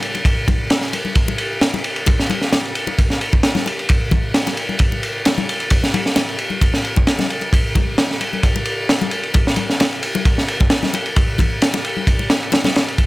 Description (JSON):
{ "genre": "breakbeat", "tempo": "132 BPM", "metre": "4/4", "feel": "swing 54% on 16ths", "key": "none", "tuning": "none", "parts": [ { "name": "crunchy breakbeat drum kit", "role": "drums", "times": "0.0-13.1 s", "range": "kick drum, ride cymbal, snare drum", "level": "-16 LUFS", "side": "equal", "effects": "none" }, { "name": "congas", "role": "percussion", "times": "0.1-12.7 s", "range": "none", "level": "-24 LUFS", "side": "left 5 dB", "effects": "none" } ], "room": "studio reverb", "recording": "none", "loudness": "-15 LUFS", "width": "side -19 dB against mid", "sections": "0.0-13.0 A section", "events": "drop 0.0-13.0", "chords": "none" }